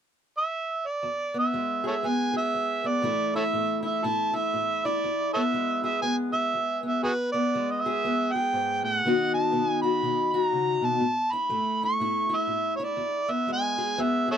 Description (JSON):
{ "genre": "acoustic country blues, solo or duo", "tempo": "120 BPM", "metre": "4/4", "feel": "swing 61% on 8ths", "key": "E major", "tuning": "A4 = 439 Hz", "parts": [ { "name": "overdriven harmonica", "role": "melody", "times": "0.4-14.4 s", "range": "F#4 to C#6", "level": "-26 LUFS", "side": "right 2 dB", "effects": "none" }, { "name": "fingerpicked steel-string acoustic guitar", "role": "accompaniment", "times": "1.0-14.4 s", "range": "E2 to G#4", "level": "-28 LUFS", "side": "left 2 dB", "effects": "none" } ], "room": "moderate booth ambience, RT60 0.2 s", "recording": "close, detailed microphones", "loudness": "-24 LUFS", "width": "side -8 dB against mid", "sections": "0.0-1.0 A section; 1.0-14.4 B section", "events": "none", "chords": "0.0 N.C.; 1.0 E; 3.0 A5; 5.0 E; 9.0 B; 11.0 A; 13.0 E" }